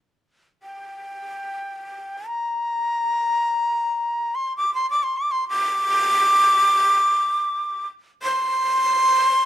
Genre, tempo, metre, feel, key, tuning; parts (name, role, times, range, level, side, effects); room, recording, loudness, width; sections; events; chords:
japanese traditional; free time; A4 = 440 Hz
breathy bright shakuhachi; solo; 0.6-9.5 s; G5 to D6; -19 LUFS; equal
light reverb; dark, warm production; -18 LUFS; side -12 dB against mid
0.0-9.5 A section